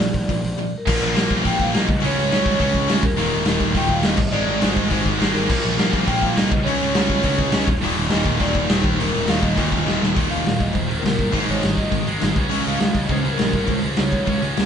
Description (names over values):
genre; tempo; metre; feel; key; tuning
punk rock; 206 BPM; 4/4; straight; unclear; A4 = 439 Hz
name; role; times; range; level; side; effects
vibraphone with medium mallets; melody; 0.0-14.4 s; Bb4 to G5; -27 LUFS; left 1 dB; none
distorted electric guitar; riff; 0.0-14.7 s; Eb2 to Db4; -26 LUFS; left 11 dB; overdrive
sludgy distorted guitar; riff; 0.0-14.7 s; Eb2 to Db4; -26 LUFS; right 9 dB; overdrive
fuzz picked electric bass; bass; 0.0-14.7 s; Eb1 to Db2; -26 LUFS; equal; overdrive
raw garage drum kit; drums; 0.0-14.6 s; crash cymbal, hi-hat, kick drum, snare drum; -21 LUFS; equal; none
high-gain distorted guitar; riff; 0.9-14.7 s; Eb2 to Db4; -25 LUFS; equal; distortion
room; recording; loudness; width
light reverb; band playing live in one room, nothing above 10.5 kHz; -17 LUFS; side -8 dB against mid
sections
0.9-10.2 A section; 10.2-14.7 B section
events
break 0.6; drum fill 9.9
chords
0.0 Bb5; 1.9 Db5; 3.0 Eb5; 4.2 Ab; 5.5 Bb5; 6.5 Db5; 7.7 Eb5; 11.3 Ab5; 12.4 Db5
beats
0.00 0.29 0.58 | 0.87 1.16 1.45 1.74 | 2.03 2.32 2.61 2.90 | 3.19 3.48 3.77 4.05 | 4.34 4.63 4.92 5.21 | 5.50 5.79 6.08 6.38 | 6.67 6.96 7.25 7.54 | 7.83 8.12 8.41 8.70 | 8.99 9.28 9.57 9.87 | 10.16 10.45 10.74 11.04 | 11.33 11.62 11.92 12.21 | 12.51 12.80 13.10 13.39 | 13.69 13.98 14.28 14.57